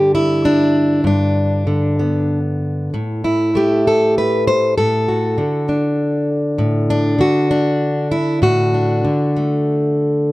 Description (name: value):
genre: folk, solo fingerstyle acoustic guitar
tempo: 65 BPM (dotted quarters)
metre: 6/8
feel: rubato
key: unclear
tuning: A4 = 440 Hz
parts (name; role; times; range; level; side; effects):
- fingerpicked plugged-in steel-string acoustic guitar; solo; 0.0-10.3 s; G2 to C5; -14 LUFS; equal; none
room: light reverb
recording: dry, close 1970s-style studio recording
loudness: -14 LUFS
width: side -19 dB against mid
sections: 0.0-10.3 A section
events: none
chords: 0.0 G; 2.9 N.C.; 4.8 D/A